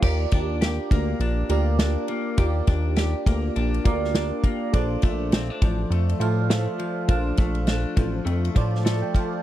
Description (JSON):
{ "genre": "indie pop, bedroom pop", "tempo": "102 BPM", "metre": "4/4", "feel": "swing 60% on 16ths", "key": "Eb lydian", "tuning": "A4 = 440 Hz", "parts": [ { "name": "semi-hollow electric guitar", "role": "accompaniment", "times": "0.0-9.4 s", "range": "F3 to G4", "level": "-29 LUFS", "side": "left 5 dB", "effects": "lush chorus, warbly pitch drift" }, { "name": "soft electric-piano-like synth keys", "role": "accompaniment", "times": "0.0-9.4 s", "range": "F4 to A5", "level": "-29 LUFS", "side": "right 6 dB", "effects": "chorus, phaser" }, { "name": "chorused synth bass", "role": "bass", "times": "0.0-9.0 s", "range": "A1 to A2", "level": "-24 LUFS", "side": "equal", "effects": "none" }, { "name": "unplugged drum kit", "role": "drums", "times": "0.0-9.3 s", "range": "crash cymbal, kick drum, ride cymbal, snare drum", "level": "-22 LUFS", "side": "equal", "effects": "none" } ], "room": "little or no reverb", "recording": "dry, close 1970s-style studio recording", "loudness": "-21 LUFS", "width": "side -13 dB against mid", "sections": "0.0-9.4 A section", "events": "synth keys fill 8.6-9.4", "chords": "0.0 Ebmaj7; 4.7 Bbmaj7" }